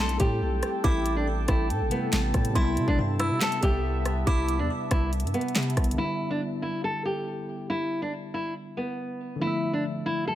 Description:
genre	hip hop, drill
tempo	140 BPM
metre	4/4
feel	half-time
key	E minor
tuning	A4 = 440 Hz
part	nylon-string guitar	melody	0.0-10.3 s	B3 to A4	-29 LUFS	equal	low-pass filter, ping-pong delay
part	delicate synth tine bell	second line	0.0-5.5 s	C6 to E6	-36 LUFS	right 3 dB	chorus, phaser, ping-pong delay
part	tine electric piano	accompaniment	0.0-10.3 s	C3 to E5	-34 LUFS	left 1 dB	medium stereo tremolo, low-pass filter
part	warbly tape-like pad	sustained chords	0.0-6.0 s	B3 to A5	-35 LUFS	right 1 dB	chorus, built-in reverb
part	long sustained 808-style bass	bass	0.0-6.0 s	A1 to C3	-28 LUFS	equal	none
part	drill drum kit	drums	0.1-6.0 s	handclaps, hi-hat, kick drum, rim click, snare drum	-26 LUFS	equal	none
room	digital ambience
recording	none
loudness	-24 LUFS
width	side -12 dB against mid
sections	0.0-6.0 A section; 6.0-10.3 B section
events	none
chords	0.0 Am7; 2.6 Cmaj7; 6.0 Em7; 9.4 Dmadd9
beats	0.41 | 0.84 1.27 1.70 2.13 | 2.56 2.98 3.41 3.84 | 4.27 4.70 5.13 5.56 | 5.98 6.41 6.84 7.27 | 7.70 8.13 8.56 8.98 | 9.41 9.84 10.27

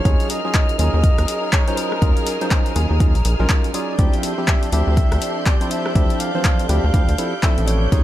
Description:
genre	deep house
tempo	122 BPM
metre	4/4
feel	swing 60% on 16ths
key	unclear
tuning	A4 = 440 Hz
part	trumpet with bucket mute	melody	0.0-8.0 s	Bb4 to F5	-28 LUFS	right 1 dB	dub echo
part	percussive organ stab	stabs	0.0-8.0 s	E3 to C5	-25 LUFS	equal	chorus, sidechain pumping, tape echo
part	dark studio string section	texture	0.0-8.0 s	D4 to Bb4	-31 LUFS	equal	sidechain pumping
part	warm symphonic violin section	texture	0.0-8.0 s	F6 to G6	-32 LUFS	left 1 dB	none
part	soft string machine	sustained chords	0.1-8.0 s	G4 to Eb6	-31 LUFS	equal	ensemble chorus, sidechain pumping
part	rubbery square bass	bass	0.1-8.0 s	A1 to Eb2	-18 LUFS	equal	sidechain pumping
part	electronic kick drum	drums	0.1-8.0 s	none	-17 LUFS	equal	none
part	punchy analog drum machine	drums	0.1-8.0 s	handclaps, hi-hat, rim click	-25 LUFS	left 2 dB	overdrive
room	light reverb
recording	echo-heavy mix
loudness	-16 LUFS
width	side -14 dB against mid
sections	0.0-8.0 A section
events	none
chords	0.1 Ebm11; 4.0 Dm11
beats	| 0.05 0.55 1.04 1.53 | 2.02 2.51 3.00 3.50 | 3.99 4.48 4.97 5.46 | 5.96 6.45 6.94 7.43 | 7.92

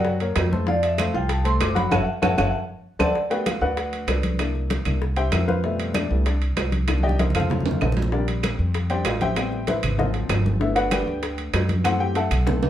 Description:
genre	Afro-Cuban jazz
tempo	193 BPM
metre	4/4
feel	straight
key	G major from 3.2 s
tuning	A4 = 440 Hz
part	vibraphone with medium hard mallets	melody	0.0-3.1 s	D5 to D6	-26 LUFS	equal	none
part	warm upright piano	accompaniment	0.0-12.7 s	B2 to A5	-25 LUFS	left 2 dB	none
part	upright bass	bass	0.0-12.7 s	F#1 to F#2	-24 LUFS	equal	none
part	bongos	percussion	0.0-12.7 s	none	-34 LUFS	left 6 dB	none
part	congas	percussion	0.1-12.7 s	none	-29 LUFS	equal	none
part	timbales	percussion	0.2-12.7 s	none	-29 LUFS	right 5 dB	none
part	claves	percussion	0.4-12.5 s	none	-33 LUFS	right 6 dB	none
room	wet studio reverb, RT60 0.7 s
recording	heard from further back in the room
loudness	-20 LUFS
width	side -11 dB against mid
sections	0.0-3.2 A section; 3.2-12.7 A section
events	vibraphone solo 0.0-3.2; band accent 1.9-3.2; drum fill 2.4-3.2, 6.9-8.1, 11.8-12.7; upright piano solo 3.2-12.7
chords	0.1 F#; 0.7 F; 1.9 F#m7; 2.5 D7(no3); 3.2 Gmaj9; 4.4 C7; 5.6 Fmaj9#11; 6.9 Cm11; 7.5 F7b9; 8.1 Bb69; 9.4 Am9; 10.0 Ab13; 10.6 Gmaj9; 11.8 F#m7b5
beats	0.05 0.36 | 0.67 0.98 1.29 1.60 | 1.91 2.22 2.54 2.85 | 3.15 3.47 3.78 4.09 | 4.40 4.71 5.02 5.33 | 5.64 5.95 6.26 6.57 | 6.88 7.19 7.50 7.81 | 8.12 8.44 8.74 9.06 | 9.37 9.68 9.99 10.30 | 10.61 10.92 11.23 11.54 | 11.85 12.16 12.47

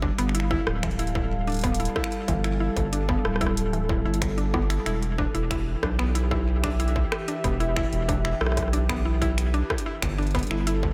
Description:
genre	IDM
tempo	93 BPM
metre	4/4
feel	straight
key	E phrygian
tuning	A4 = 440 Hz
part	warbly tape-like pad	sustained chords	0.0-10.9 s	E3 to F5	-34 LUFS	equal	chorus, built-in reverb
part	mallet-like synth pluck	arpeggios	0.0-10.8 s	E3 to E4	-33 LUFS	equal	chorus, dub echo
part	round analog bass	bass	0.0-10.9 s	D1 to B1	-28 LUFS	equal	none
part	electronic kick drum	drums	0.0-10.9 s	none	-32 LUFS	equal	distortion
part	booming analog drum machine	drums	0.2-10.8 s	finger snaps, hi-hat, rim click	-35 LUFS	equal	tape echo
room	light reverb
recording	echo-heavy mix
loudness	-25 LUFS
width	mono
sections	0.0-10.9 A section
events	none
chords	0.0 G7(no3); 4.9 Em; 10.0 N.C.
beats	0.35 0.99 1.64 | 2.28 2.93 3.57 4.22 | 4.86 5.51 6.15 6.80 | 7.44 8.09 8.73 9.38 | 10.02 10.67

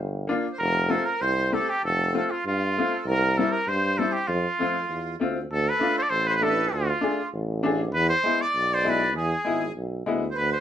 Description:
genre	klezmer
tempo	98 BPM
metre	2/4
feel	straight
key	F major, D dorian sharp4 from 5.5 s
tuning	A4 = 440 Hz
part	warm tuba	bass	0.0-10.5 s	F1 to G2	-28 LUFS	right 1 dB	none
part	bright upright piano	accompaniment	0.3-10.2 s	G3 to G#4	-26 LUFS	left 3 dB	none
part	accordion	second line	0.5-10.6 s	F4 to D5	-31 LUFS	right 4 dB	none
part	cornet with straight mute	melody	0.6-10.6 s	F4 to D5	-25 LUFS	equal	none
room	moderate studio reverb, RT60 0.5 s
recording	minimal, uncompressed stereo recording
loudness	-22 LUFS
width	side -10 dB against mid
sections	0.0-5.5 A section; 5.5-10.6 B section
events	none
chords	0.0 Bb; 0.6 F; 3.0 C; 4.3 F; 5.5 Dm; 7.9 E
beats	| 0.58 1.20 | 1.82 2.44 | 3.05 3.67 | 4.28 4.89 | 5.50 6.11 | 6.72 7.33 | 7.94 8.55 | 9.15 9.76 | 10.36

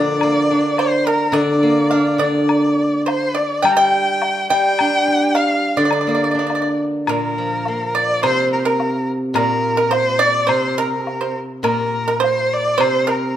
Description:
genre	chinese traditional, Chinese chamber ensemble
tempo	106 BPM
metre	2/4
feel	rubato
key	D jue mode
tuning	A4 = 440 Hz
part	warm erhu	melody	0.0-13.4 s	Bb4 to Bb5	-20 LUFS	left 1 dB	none
part	pipa	second line	0.0-13.4 s	Bb4 to G5	-20 LUFS	right 2 dB	none
part	steel-string zither	accompaniment	0.0-13.4 s	Bb2 to G4	-19 LUFS	equal	none
part	woodblock	percussion	0.2-12.9 s	none	-26 LUFS	left 5 dB	none
room	moderate recital hall reverb, RT60 1.3 s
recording	none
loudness	-15 LUFS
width	side -11 dB against mid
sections	0.0-7.1 A section; 7.1-13.4 B section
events	none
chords	none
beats	| 0.22 0.78 | 1.34 1.92 | 2.50 3.08 | 3.65 4.22 | 4.79 5.35 | 5.92 6.49 | 7.08 7.66 | 8.23 8.79 | 9.36 9.92 | 10.49 11.07 | 11.65 12.23 | 12.81

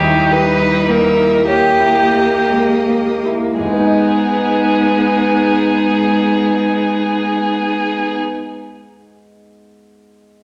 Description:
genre	classical, slow romantic movement for piano quintet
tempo	25-37 BPM (dotted quarters)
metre	12/8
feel	rubato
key	G# minor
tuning	A4 = 441 Hz
part	rich violin	melody	0.0-8.2 s	G4 to B4	-19 LUFS	equal	none
part	clear violin	second line	0.0-8.2 s	D#4 to E5	-24 LUFS	equal	none
part	rich cello	second line	0.0-8.2 s	G3 to A#3	-22 LUFS	equal	none
part	warm concert grand piano	accompaniment	0.0-10.4 s	D#2 to D#5	-23 LUFS	equal	none
part	warm viola	accompaniment	0.0-8.2 s	B3 to G4	-22 LUFS	equal	none
room	wet recital hall reverb, RT60 1.6 s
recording	none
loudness	-14 LUFS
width	mono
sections	0.0-3.6 A section; 3.6-10.4 B section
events	slowing down 0.0-3.6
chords	0.0 D#7b9; 3.6 G#m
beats	1.47 | 3.60 5.54 7.53 9.54

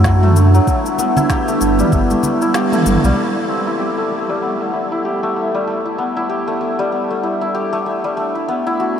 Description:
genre	organic downtempo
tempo	96 BPM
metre	4/4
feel	swing 58% on 16ths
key	unclear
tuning	A4 = 440 Hz
part	warbly tape-like pad	sustained chords	0.0-9.0 s	G3 to C6	-21 LUFS	right 2 dB	chorus, built-in reverb, sidechain pumping
part	santur	arpeggios	0.0-9.0 s	F#3 to G4	-18 LUFS	left 2 dB	low-pass filter, tape echo
part	warm sub bass	bass	0.0-3.1 s	G1 to F#2	-13 LUFS	equal	sidechain pumping
part	organic electronic drum kit	drums	0.0-3.1 s	shaker, snare drum, toms	-23 LUFS	equal	overdrive, low-pass filter on perc, low-pass filter on snare, low-pass filter on toms, low-pass filter on room
part	electronic kick drum	drums	0.1-2.1 s	none	-19 LUFS	equal	overdrive
part	congas	percussion	0.4-3.1 s	none	-27 LUFS	equal	none
room	wet huge ambient reverb, RT60 8.4 s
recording	dreamy mix soaked in reverb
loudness	-14 LUFS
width	side -8 dB against mid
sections	0.0-3.2 A section; 3.2-9.0 B section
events	kick drops out 2.5-3.2; band accent 2.5-2.9; filter sweep on ambient pad 3.2-9.0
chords	0.0 D7; 0.7 G6; 3.2 Cmaj7; 5.7 Em7; 8.2 Bm7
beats	0.05 | 0.67 1.30 1.92 2.55 | 3.17 3.80 4.42 5.05 | 5.67 6.30 6.92 7.55 | 8.17 8.80

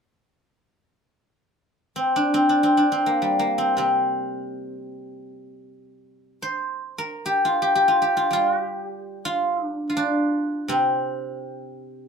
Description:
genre	chinese traditional, Chinese solo plucked strings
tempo	free time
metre	none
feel	none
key	C shang mode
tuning	A4 = 440 Hz
part	guzheng	solo	2.0-12.1 s	C3 to C5	-21 LUFS	equal	none
room	light reverb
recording	band playing live in one room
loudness	-20 LUFS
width	side -6 dB against mid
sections	1.5-12.1 A section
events	none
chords	none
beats	free time

